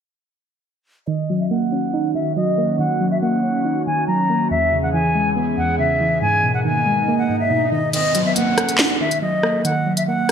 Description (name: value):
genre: hip hop, drill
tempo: 140 BPM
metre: 4/4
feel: half-time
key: Eb phrygian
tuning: A4 = 439 Hz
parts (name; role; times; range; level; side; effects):
- concert flute; melody; 1.1-10.3 s; Eb5 to Bb5; -20 LUFS; left 1 dB; low-pass filter, digital delay
- soft round pluck; accompaniment; 1.1-10.3 s; E2 to Eb4; -20 LUFS; right 1 dB; chorus, low-pass filter
- airy breathy pad; sustained chords; 1.1-7.9 s; Cb3 to G#4; -26 LUFS; equal; chorus, low-pass filter
- swell and downlifter; sound effects; 6.2-10.3 s; none; -27 LUFS; left 1 dB; none
- drill drum kit; drums; 7.9-10.3 s; crash cymbal, handclaps, hi-hat, rim click, snare drum; -20 LUFS; left 1 dB; gated reverb
room: moderate plate reverb, RT60 1.3 s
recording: bright 1980s-style digital production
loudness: -16 LUFS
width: side -7 dB against mid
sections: 1.1-7.9 A section; 7.9-10.3 B section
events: filter sweep 1.1-7.9; swell 6.2-7.9; kick muted 7.9-10.3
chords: 1.1 Ebm7; 4.5 E6; 6.2 Abmadd9; 7.9 Ebm7